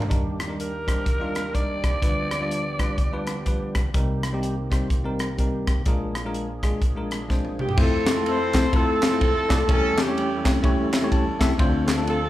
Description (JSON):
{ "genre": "uptempo gospel", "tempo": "125 BPM", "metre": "4/4", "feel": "swing 61% on 8ths", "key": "Eb major, F major from 7.8 s", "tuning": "A4 = 439 Hz", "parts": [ { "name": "bell-like tine electric piano", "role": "accompaniment", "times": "0.0-12.3 s", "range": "Bb1 to A5", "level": "-27 LUFS", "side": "left 2 dB", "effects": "slapback echo" }, { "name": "tonewheel organ", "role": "sustained chords", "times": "0.0-12.3 s", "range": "D2 to C#5", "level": "-33 LUFS", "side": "right 3 dB", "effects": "slow rotary speaker, overdrive, chorus vibrato" }, { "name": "crisp fusion drum kit", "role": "drums", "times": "0.0-12.2 s", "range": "crash cymbal, hi-hat, kick drum, ride cymbal, rim click, snare drum, toms", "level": "-23 LUFS", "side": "equal", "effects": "none" }, { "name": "raspy alto saxophone", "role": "melody", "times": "0.6-3.8 s", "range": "Bb4 to D5", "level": "-29 LUFS", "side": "right 1 dB", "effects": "slapback echo" }, { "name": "warm horn section", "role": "melody", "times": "7.6-12.3 s", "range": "C4 to C5", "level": "-23 LUFS", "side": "equal", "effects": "none" }, { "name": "group handclap", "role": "percussion", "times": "8.1-12.0 s", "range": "none", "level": "-34 LUFS", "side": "right 2 dB", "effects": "none" } ], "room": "light reverb, small room reverb", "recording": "live gig heard through the venue's PA, club reverb", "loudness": "-21 LUFS", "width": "side -14 dB against mid", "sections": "0.1-7.8 A section; 7.8-12.3 B section", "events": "drum fill 7.3-7.8; tine electric piano fill 10.6-11.6", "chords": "0.1 Ebmaj7; 2.0 G7/D; 3.9 Cm7; 5.9 Bb7; 7.8 Fmaj7; 9.7 A7/E; 11.6 Dm7" }